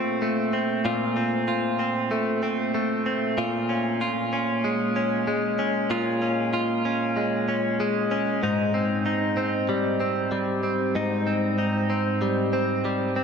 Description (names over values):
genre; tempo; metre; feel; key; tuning
dream pop; 95 BPM; 4/4; straight; Bb dorian; A4 = 439 Hz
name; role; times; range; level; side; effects
direct-recorded clean electric guitar; solo; 0.0-13.2 s; Ab2 to F4; -22 LUFS; equal; wide subtle chorus, diffuse ambient delay
room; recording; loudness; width
wet cathedral reverb, RT60 5.7 s; dreamy mix soaked in reverb; -22 LUFS; side -6 dB against mid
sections
0.0-13.2 A section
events
none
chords
0.0 F/Bb; 3.4 Bbm7; 8.4 Abmaj7